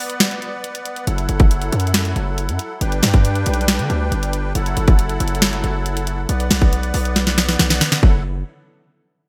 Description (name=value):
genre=hip hop, trap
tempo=138 BPM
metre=4/4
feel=half-time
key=F# phrygian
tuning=A4 = 440 Hz
part: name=musette accordion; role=sustained chords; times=0.0-8.2 s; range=F#3 to G5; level=-28 LUFS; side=equal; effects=none
part: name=trap drum kit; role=drums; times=0.1-8.1 s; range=hi-hat, kick drum, snare drum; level=-18 LUFS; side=equal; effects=gated reverb
part: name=distorted 808-style bass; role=bass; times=1.1-8.4 s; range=F#1 to D3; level=-23 LUFS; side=equal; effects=distortion
room=light reverb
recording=bright 1980s-style digital production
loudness=-18 LUFS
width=mono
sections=0.0-8.0 A section; 8.0-9.3 B section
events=break 0.0-1.1; drum fill 7.2-8.0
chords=0.0 Bm; 1.1 F#m7; 2.8 G; 4.6 F#m7; 6.3 Bm; 8.0 F#m7